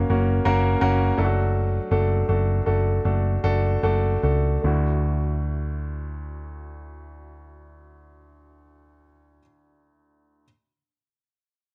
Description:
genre	pop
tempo	73-85 BPM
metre	4/4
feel	straight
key	D major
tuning	A4 = 442 Hz
part	clear baby grand piano	accompaniment	0.0-10.5 s	D2 to C#5	-27 LUFS	equal	none
part	hollow-body short-scale picked electric bass	bass	0.0-9.4 s	F#1 to D2	-25 LUFS	equal	none
room	small room ambience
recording	dark, warm production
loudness	-22 LUFS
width	mono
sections	0.0-4.6 A section; 4.6-7.9 B section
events	slowing down 0.0-4.6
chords	0.0 F#; 1.2 D/F#; 4.6 Dadd9

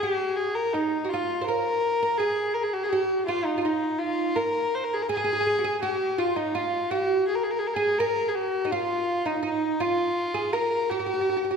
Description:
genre	persian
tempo	83 BPM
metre	4/4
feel	straight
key	F dastgah shur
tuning	A4 = 440 Hz
part	bright kamancheh	melody	0.0-11.6 s	Eb4 to C5	-26 LUFS	left 2 dB	none
part	oud	second line	0.0-11.6 s	Eb4 to C5	-27 LUFS	right 3 dB	none
room	wet concert hall reverb, RT60 2.2 s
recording	recorded in a church or concert hall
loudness	-23 LUFS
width	side -6 dB against mid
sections	0.0-11.6 A section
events	none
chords	none

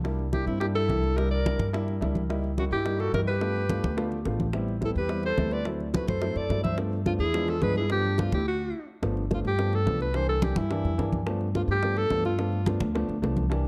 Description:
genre	Afro-Cuban jazz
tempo	214 BPM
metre	4/4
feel	straight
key	G mixolydian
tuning	A4 = 440 Hz
part	warm upright piano	accompaniment	0.0-13.7 s	E3 to F4	-34 LUFS	equal	none
part	upright bass	bass	0.0-13.7 s	G1 to G2	-31 LUFS	equal	none
part	bongos	percussion	0.0-13.7 s	none	-39 LUFS	equal	none
part	congas	percussion	0.1-13.7 s	none	-35 LUFS	equal	none
part	clear alto saxophone	melody	0.3-13.1 s	E4 to E5	-32 LUFS	equal	none
part	hollow concert flute	second line	0.3-8.4 s	C4 to C5	-38 LUFS	equal	analog delay
room	moderate spring reverb, RT60 1.4 s, studio reverb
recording	dark, warm production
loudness	-27 LUFS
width	mono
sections	0.0-9.0 A section; 9.0-13.7 A section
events	stop 8.5-9.0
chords	0.0 C9; 2.3 C#dim7; 3.4 G9; 4.5 Am7; 5.7 D9; 6.8 G9; 7.3 E7b9; 7.9 G9; 8.5 D; 9.0 G9; 10.1 C9; 11.3 G9

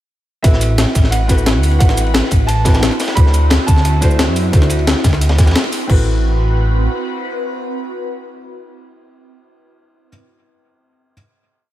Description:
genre	liquid drum and bass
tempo	176 BPM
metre	4/4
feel	straight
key	A dorian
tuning	A4 = 435 Hz
part	warm grand piano	melody	0.4-4.7 s	E5 to B5	-24 LUFS	right 2 dB	ping-pong delay
part	felt-muted upright piano	accompaniment	0.4-11.1 s	C4 to C5	-24 LUFS	left 2 dB	dub echo
part	airy breathy pad	sustained chords	0.4-9.4 s	C4 to B4	-25 LUFS	right 2 dB	chorus, phaser, sidechain pumping
part	dark detuned saw bass	bass	0.4-6.9 s	A1 to F#2	-15 LUFS	equal	tube saturation
part	breakbeat sampler-style drum kit	drums	0.4-6.0 s	crash cymbal, hi-hat, shaker, snare drum	-19 LUFS	left 1 dB	studio reverb
part	crunchy breakbeat drum kit	drums	0.4-5.9 s	ride cymbal, snare drum	-25 LUFS	equal	high-pass filter on cymbals, studio reverb, high-pass filter on snare, high-pass filter on room
part	electronic kick drum	drums	0.4-6.0 s	none	-12 LUFS	equal	studio reverb
room	studio reverb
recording	none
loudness	-12 LUFS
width	side -14 dB against mid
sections	0.4-5.9 drop; 5.9-8.6 final chord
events	drop 0.4-5.9; band accent 5.6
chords	0.4 Am69; 3.2 D9; 5.9 Am69

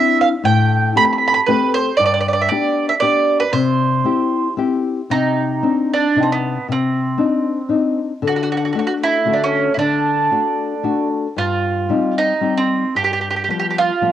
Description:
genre	italian folk, Italian serenade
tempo	115 BPM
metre	3/4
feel	swing 53% on 8ths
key	C major, C harmonic minor from 5.1 s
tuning	A4 = 439 Hz
part	mandolin	melody	0.0-14.1 s	B3 to B5	-17 LUFS	right 4 dB	none
part	nylon-string guitar	accompaniment	0.0-14.1 s	G2 to G4	-19 LUFS	left 5 dB	cassette tape
room	moderate spring reverb, RT60 2.1 s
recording	home recording on cassette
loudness	-15 LUFS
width	side -11 dB against mid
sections	0.0-5.1 A section; 5.1-14.1 B section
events	none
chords	0.4 Am7; 2.0 G; 3.5 C; 5.1 Cmadd9; 8.2 D; 11.4 Cm/G; 13.0 G7

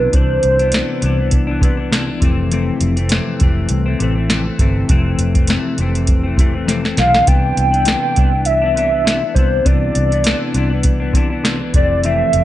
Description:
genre	indie pop, bedroom pop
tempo	101 BPM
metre	4/4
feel	swing 55% on 16ths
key	C major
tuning	A4 = 441 Hz
part	warbly nostalgic lead	melody	0.0-1.3, 7.0-12.4 s	B4 to G5	-16 LUFS	right 1 dB	analog chorus, slapback echo
part	clean electric guitar	accompaniment	0.0-12.4 s	F2 to D4	-20 LUFS	left 3 dB	analog chorus, warbly pitch drift
part	vintage muted fingered electric bass	bass	0.0-12.4 s	F1 to C2	-19 LUFS	equal	none
part	soft vintage rhythm box	drums	0.1-12.4 s	hi-hat, kick drum, snare drum	-16 LUFS	equal	none
room	digital ambience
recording	nothing above 11.0 kHz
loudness	-13 LUFS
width	side -14 dB against mid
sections	0.0-12.4 A section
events	drum fill 6.7-7.3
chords	0.0 Cmaj9; 2.2 Fmaj7; 7.3 Cmaj9; 11.7 Fmaj7

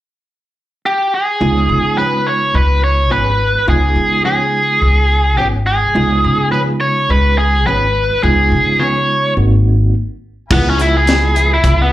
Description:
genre	straight-eighth soul blues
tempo	106 BPM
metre	4/4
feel	swing 55% on 16ths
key	Db mixolydian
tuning	A4 = 439 Hz
part	biting lead guitar	melody	0.9-11.9 s	Cb4 to Db5	-14 LUFS	equal	overdrive, slapback echo
part	overdriven reed electric piano	accompaniment	1.4-11.9 s	Ab3 to Gb4	-21 LUFS	right 3 dB	medium tremolo, slapback echo
part	upright bass	bass	1.4-11.9 s	Ab1 to Db3	-15 LUFS	equal	none
part	direct-recorded clean electric guitar	stabs	2.0-11.5 s	F3 to Ab4	-24 LUFS	left 4 dB	ensemble chorus, slapback echo
part	bright horn section	sustained chords	10.5-11.9 s	E5 to Cb6	-29 LUFS	left 4 dB	none
part	tight funk drum kit	drums	10.5-11.8 s	crash cymbal, hi-hat, kick drum, snare drum	-16 LUFS	left 1 dB	none
room	little or no reverb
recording	live gig heard through the venue's PA, club reverb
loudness	-11 LUFS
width	side -14 dB against mid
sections	0.0-1.4 A section; 1.4-10.5 B section; 10.5-11.9 C section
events	stop 9.9-10.5; lead electric guitar solo 10.5-11.9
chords	0.0 N.C.; 1.4 Db7; 9.4 Ab7; 10.5 Db7#9

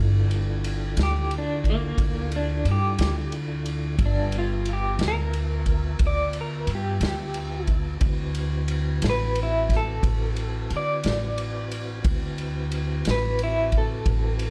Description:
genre	slow blues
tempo	60 BPM (dotted quarters)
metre	12/8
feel	straight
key	G mixolydian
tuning	A4 = 439 Hz
part	mellow tonewheel organ	sustained chords	0.0-14.5 s	B3 to A5	-39 LUFS	equal	slow rotary speaker, chorus vibrato
part	upright bass	bass	0.0-14.5 s	G1 to D3	-28 LUFS	equal	none
part	vintage drum kit	drums	0.3-14.5 s	kick drum, ride cymbal, snare drum	-30 LUFS	equal	none
part	electric guitar through a small old amp	melody	1.0-14.5 s	Bb3 to D5	-31 LUFS	equal	tremolo
room	little or no reverb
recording	dark, warm production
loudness	-25 LUFS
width	mono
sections	0.0-14.5 A section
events	clean electric guitar solo 0.0-14.5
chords	0.0 G13; 8.0 D13

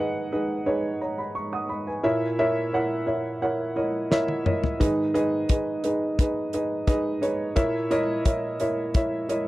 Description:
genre	piano-driven pop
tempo	87 BPM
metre	4/4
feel	straight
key	G# minor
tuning	A4 = 440 Hz
part	dark upright piano	accompaniment	0.0-9.5 s	G#2 to D#6	-24 LUFS	right 1 dB	none
part	damped 70s drum kit	drums	4.1-9.5 s	hi-hat, kick drum, snare drum, toms	-23 LUFS	left 1 dB	none
room	little or no reverb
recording	dry, close 1970s-style studio recording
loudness	-23 LUFS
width	side -17 dB against mid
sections	0.0-9.5 A section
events	drum fill 4.1-4.8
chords	0.0 G#m; 2.0 A#dim; 4.8 G#m; 7.6 A#dim

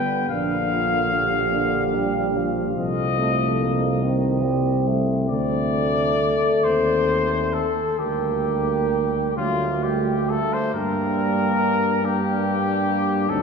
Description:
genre	classical, hymn-like piece for brass band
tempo	43-49 BPM (dotted quarters)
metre	6/8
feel	rubato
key	G minor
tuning	A4 = 440 Hz
part	warm cornet	melody	0.0-13.4 s	F4 to G5	-24 LUFS	left 4 dB	none
part	mellow French horn section	second line	0.0-13.4 s	B3 to C5	-26 LUFS	right 2 dB	none
part	clear euphonium	accompaniment	0.0-13.4 s	G3 to D4	-29 LUFS	left 1 dB	none
part	clear euphonium	accompaniment	0.0-13.4 s	D3 to A3	-28 LUFS	right 2 dB	none
part	mellow tuba	bass	0.0-13.4 s	G1 to G2	-25 LUFS	equal	none
room	wet church reverb, RT60 3.8 s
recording	heard from further back in the room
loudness	-19 LUFS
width	side -5 dB against mid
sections	0.0-10.7 A section; 10.7-13.4 B section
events	none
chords	0.3 Gm/Bb; 2.8 Adim/C; 5.3 D5; 6.6 Cm/Eb; 8.0 Gm/D; 9.4 D; 10.7 Gm

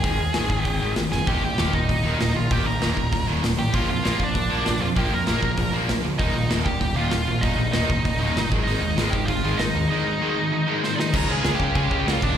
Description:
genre	punk rock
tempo	195 BPM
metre	4/4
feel	straight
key	Eb major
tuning	A4 = 440 Hz
part	nasal lead guitar with a parked wah	melody	0.0-12.4 s	C4 to Bb5	-26 LUFS	right 2 dB	overdrive, slapback echo, ping-pong delay
part	overdriven electric guitar	riff	0.0-12.4 s	Eb2 to Db4	-27 LUFS	left 7 dB	slapback echo
part	fuzz picked electric bass	bass	0.0-12.3 s	Eb1 to Db3	-26 LUFS	equal	overdrive
part	big rock drum kit	drums	0.0-12.3 s	crash cymbal, hi-hat, kick drum, snare drum	-26 LUFS	equal	none
part	tight distorted guitar	riff	1.3-12.4 s	Eb2 to Db4	-28 LUFS	right 11 dB	distortion, slapback echo
room	little or no reverb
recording	live gig heard through the venue's PA, recital hall reverb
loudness	-20 LUFS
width	side -9 dB against mid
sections	0.0-11.1 A section; 11.1-12.4 B section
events	drum fill 1.1, 10.8-11.1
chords	0.0 Ab5; 1.3 Eb; 3.7 Bb; 6.2 Eb; 8.5 Ab5; 11.1 Db

